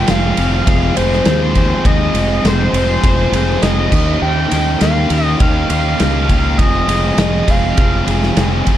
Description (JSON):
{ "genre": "indie rock", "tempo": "101 BPM", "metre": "4/4", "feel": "straight", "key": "F minor", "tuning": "A4 = 435 Hz", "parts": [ { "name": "overdriven synth lead", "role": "melody", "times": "0.0-8.4 s", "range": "C5 to G5", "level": "-19 LUFS", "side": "equal", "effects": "chorus, tape echo" }, { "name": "biting overdriven guitar", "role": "riff", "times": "0.0-8.8 s", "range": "F2 to Ab4", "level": "-21 LUFS", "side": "left 8 dB", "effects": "none" }, { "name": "sludgy distorted guitar", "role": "riff", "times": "0.0-8.8 s", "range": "Eb3 to Ab4", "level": "-20 LUFS", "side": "right 7 dB", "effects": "overdrive, wide subtle chorus, tape echo" }, { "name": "fuzz fingered electric bass", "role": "bass", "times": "0.1-8.8 s", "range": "F1 to Eb2", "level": "-17 LUFS", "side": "equal", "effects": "overdrive" }, { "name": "loose indie drum kit", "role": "drums", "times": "0.1-8.8 s", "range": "crash cymbal, kick drum, ride cymbal, snare drum", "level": "-17 LUFS", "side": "equal", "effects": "none" } ], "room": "little or no reverb", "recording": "dark, warm production", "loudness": "-12 LUFS", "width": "side -12 dB against mid", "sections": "0.0-8.8 A section", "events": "none", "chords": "0.0 Fm7; 3.9 Eb5; 6.6 Fm7" }